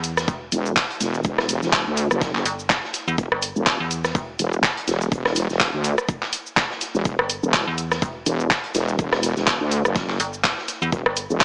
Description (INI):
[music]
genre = bass house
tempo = 124 BPM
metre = 4/4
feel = swing 56% on 16ths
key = E minor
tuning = A4 = 440 Hz
[part]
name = metallic FM bass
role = bass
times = 0.0-11.3 s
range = E1 to E2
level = -26 LUFS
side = equal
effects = tube saturation, sidechain pumping
[part]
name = house drum kit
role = drums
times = 0.0-11.4 s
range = handclaps, hi-hat, rim click, shaker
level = -21 LUFS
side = equal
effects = none
[part]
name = raw garage drum kit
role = drums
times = 0.0-11.4 s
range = hi-hat, shaker, snare drum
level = -33 LUFS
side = equal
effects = none
[part]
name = electronic kick drum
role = drums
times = 0.3-11.4 s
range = none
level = -25 LUFS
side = equal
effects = none
[part]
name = wobble bass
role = bass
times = 0.5-11.4 s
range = E1 to D2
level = -22 LUFS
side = equal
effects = chorus, sidechain pumping
[sound]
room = light reverb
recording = small speaker sound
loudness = -19 LUFS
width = side -28 dB against mid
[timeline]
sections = 0.0-11.4 A section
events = none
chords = 0.0 Em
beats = 0.28 0.76 | 1.25 1.73 2.21 2.70 | 3.18 3.67 4.15 4.63 | 5.12 5.60 6.09 6.57 | 7.05 7.54 8.02 8.51 | 8.99 9.47 9.96 10.44 | 10.92 11.41